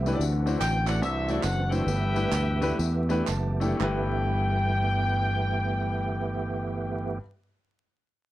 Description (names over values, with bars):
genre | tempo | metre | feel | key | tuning
uptempo gospel | 112-149 BPM | 4/4 | swing 64% on 8ths | G major | A4 = 440 Hz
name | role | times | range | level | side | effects
clear grand piano | accompaniment | 0.0-7.2 s | G2 to A5 | -31 LUFS | left 2 dB | none
bright tonewheel organ | sustained chords | 0.0-7.2 s | E3 to G4 | -33 LUFS | right 4 dB | fast rotary speaker, chorus vibrato
fingered electric bass | bass | 0.0-7.2 s | F#1 to E2 | -27 LUFS | equal | none
tambourine and handclaps | percussion | 0.1-4.1 s | none | -37 LUFS | right 5 dB | none
clear horn section | melody | 0.6-7.2 s | A4 to G5 | -31 LUFS | left 2 dB | none
room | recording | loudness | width
little or no reverb | dry, close 1970s-style studio recording, vinyl crackle | -24 LUFS | side -15 dB against mid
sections
0.2-3.8 A section; 3.8-8.1 B section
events
grand piano fill 0.0, 3.0-3.8; slowing down 0.2-3.8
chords
0.2 D9; 1.9 G69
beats
| 0.20 0.61 1.02 1.44 | 1.87 2.32 2.79 3.28 | 3.80 4.34 4.88 5.42 | 5.95 6.49 7.03